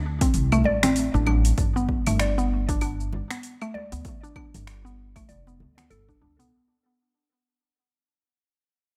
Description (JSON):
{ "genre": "organic downtempo", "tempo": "97 BPM", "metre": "4/4", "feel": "swing 59% on 16ths", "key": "unclear", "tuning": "A4 = 441 Hz", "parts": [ { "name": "upright bass", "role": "bass", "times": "0.0-6.5 s", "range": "F1 to D2", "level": "-27 LUFS", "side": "equal", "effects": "sidechain pumping" }, { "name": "mallet-like synth pluck", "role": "arpeggios", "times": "0.2-6.5 s", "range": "A3 to D5", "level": "-29 LUFS", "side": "equal", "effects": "chorus, tape echo" }, { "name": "deep house drum kit", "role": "drums", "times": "0.2-6.5 s", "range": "claves, finger snaps, hi-hat, shaker", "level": "-32 LUFS", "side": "equal", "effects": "overdrive, studio ambience" }, { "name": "electronic kick drum", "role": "drums", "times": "0.2-6.2 s", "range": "none", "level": "-29 LUFS", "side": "equal", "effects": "overdrive, studio ambience" }, { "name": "congas", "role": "percussion", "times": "0.5-6.4 s", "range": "none", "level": "-35 LUFS", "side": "equal", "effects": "none" } ], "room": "light reverb, digital ambience", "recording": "none", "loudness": "-23 LUFS", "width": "mono", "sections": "0.0-6.5 A section", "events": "fade-out 0.0-6.5; filter sweep on synth pluck 0.0-6.5", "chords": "0.0 D5; 1.6 G", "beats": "0.34 0.96 | 1.58 2.19 2.81 3.43 | 4.05 4.67 5.29 5.91" }